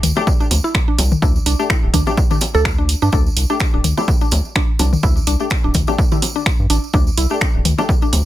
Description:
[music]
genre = minimal techno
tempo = 126 BPM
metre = 4/4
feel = swing 56% on 16ths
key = unclear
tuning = A4 = 440 Hz
[part]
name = round analog bass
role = bass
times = 0.0-8.2 s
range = D1 to G2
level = -18 LUFS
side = equal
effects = sidechain pumping
[part]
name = punchy analog drum machine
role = drums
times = 0.0-8.2 s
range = finger snaps, hi-hat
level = -20 LUFS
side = right 1 dB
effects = soft clipping on snare
[part]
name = electronic toms and bongos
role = percussion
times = 0.0-8.2 s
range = none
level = -22 LUFS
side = left 3 dB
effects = overdrive, tape echo
[part]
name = tambourine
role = percussion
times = 0.0-8.2 s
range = none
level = -29 LUFS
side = right 4 dB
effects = none
[part]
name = mallet-like synth pluck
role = riff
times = 0.2-8.1 s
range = D4 to A4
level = -23 LUFS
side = right 1 dB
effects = chorus, sidechain pumping, ping-pong delay
[part]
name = wavetable chord stab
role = stabs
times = 0.2-7.8 s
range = A3 to G4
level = -24 LUFS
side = left 4 dB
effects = tape echo
[part]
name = electronic kick drum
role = drums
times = 0.3-8.0 s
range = none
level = -17 LUFS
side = equal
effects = none
[sound]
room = little or no reverb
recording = dense, heavily limited modern master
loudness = -14 LUFS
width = side -14 dB against mid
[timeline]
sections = 0.0-8.3 A section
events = none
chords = none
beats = 0.27 0.75 | 1.22 1.70 2.17 2.65 | 3.13 3.60 4.08 4.56 | 5.03 5.51 5.99 6.46 | 6.94 7.41 7.89

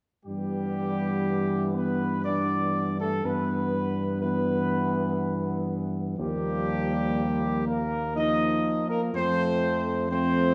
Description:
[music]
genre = classical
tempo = 61 BPM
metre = 3/4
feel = straight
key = unclear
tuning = A4 = 440 Hz
[part]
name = dark trumpet section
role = melody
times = 0.2-10.5 s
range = G4 to Eb5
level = -32 LUFS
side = equal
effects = none
[part]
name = warm French horn section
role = sustained chords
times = 0.3-10.5 s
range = G3 to Eb4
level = -34 LUFS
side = equal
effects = none
[part]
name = warm trombone section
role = sustained chords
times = 0.3-10.5 s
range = E3 to B3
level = -33 LUFS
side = equal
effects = none
[part]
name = mellow tuba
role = bass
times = 0.3-10.5 s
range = Eb2 to G2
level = -32 LUFS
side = equal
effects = none
[sound]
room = wet recital hall reverb, RT60 1.4 s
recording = dark, warm production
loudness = -27 LUFS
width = mono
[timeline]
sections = 0.3-10.5 A section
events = none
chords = 0.3 G6; 6.2 Ebadd9; 9.1 F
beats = | 0.26 1.26 2.25 | 3.25 4.22 5.20 | 6.18 7.16 8.16 | 9.14 10.11

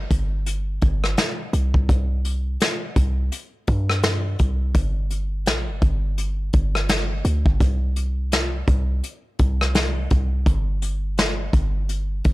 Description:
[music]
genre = contemporary R&B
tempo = 84 BPM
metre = 4/4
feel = swing 58% on 16ths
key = unclear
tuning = A4 = 437 Hz
[part]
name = warm 808-style bass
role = bass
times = 0.0-12.3 s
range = G1 to G2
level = -22 LUFS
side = equal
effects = none
[part]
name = vintage brush drum kit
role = drums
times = 0.1-12.3 s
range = hi-hat, kick drum, rim click, snare drum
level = -21 LUFS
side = equal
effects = none
[sound]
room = little or no reverb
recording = none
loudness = -20 LUFS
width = side -18 dB against mid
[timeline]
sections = 0.0-12.3 A section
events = none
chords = none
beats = 0.46 1.18 | 1.89 2.60 3.32 4.03 | 4.75 5.46 6.18 6.89 | 7.61 8.32 9.03 9.75 | 10.46 11.18 11.89

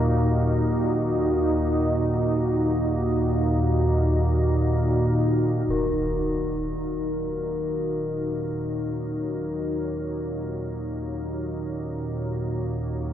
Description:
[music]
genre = dark ambient drone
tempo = free time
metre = none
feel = none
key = Eb minor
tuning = A4 = 440 Hz
[part]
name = deep dark ambient pad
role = sustained chords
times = 0.0-13.1 s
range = Eb4 to Eb5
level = -26 LUFS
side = equal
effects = chorus, built-in reverb
[part]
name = organ-like drone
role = drone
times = 0.0-13.1 s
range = Eb2 to Bb2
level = -25 LUFS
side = right 1 dB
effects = ensemble chorus, built-in reverb
[part]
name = quartz singing bowl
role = texture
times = 0.0-13.1 s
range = Bb4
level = -35 LUFS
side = left 4 dB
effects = none
[part]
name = concert bass drum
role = percussion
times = 5.7-5.9 s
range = none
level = -36 LUFS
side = right 1 dB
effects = low-pass filter on kick
[sound]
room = wet cathedral reverb, RT60 6.2 s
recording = dark, warm production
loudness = -22 LUFS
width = side -10 dB against mid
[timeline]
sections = 0.0-5.7 A section; 5.7-13.1 B section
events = filter sweep on synth drone 0.0-5.7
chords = 0.0 Ebm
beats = free time

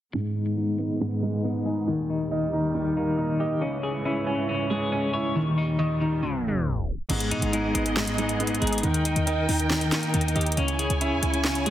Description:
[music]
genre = hip hop, trap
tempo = 138 BPM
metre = 4/4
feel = half-time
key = G# harmonic minor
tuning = A4 = 442 Hz
[part]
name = felt-muted upright piano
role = accompaniment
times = 0.1-11.7 s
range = G#2 to D#5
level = -28 LUFS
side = right 3 dB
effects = low-pass filter
[part]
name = dark symphonic string section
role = sustained chords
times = 0.1-11.7 s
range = C#2 to G#5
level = -32 LUFS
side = right 2 dB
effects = low-pass filter
[part]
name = clean electric guitar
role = arpeggios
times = 0.1-11.7 s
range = D#3 to C#5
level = -27 LUFS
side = left 3 dB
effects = tremolo, low-pass filter, tape echo
[part]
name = short 808-style bass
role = bass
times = 7.1-11.7 s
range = G#1 to C#3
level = -28 LUFS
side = equal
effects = none
[part]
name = trap drum kit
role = drums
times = 7.1-11.7 s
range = crash cymbal, handclaps, hi-hat, snare drum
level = -29 LUFS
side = equal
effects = none
[sound]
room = light reverb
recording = dense, heavily limited modern master, tape stop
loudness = -23 LUFS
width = side -12 dB against mid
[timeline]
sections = 0.1-7.1 A section; 7.1-11.7 B section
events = filter sweep 0.1-7.1; tape stop 6.2-7.1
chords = 0.1 G#m; 1.9 D#; 3.6 C#m; 5.4 D#; 7.1 G#m; 8.8 D#; 10.6 C#m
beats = | 0.14 0.57 1.01 1.44 | 1.88 2.31 2.75 3.18 | 3.62 4.05 4.49 4.92 | 5.36 5.79 6.23 6.66 | 7.10 7.53 7.97 8.40 | 8.84 9.27 9.71 10.14 | 10.57 11.01 11.44

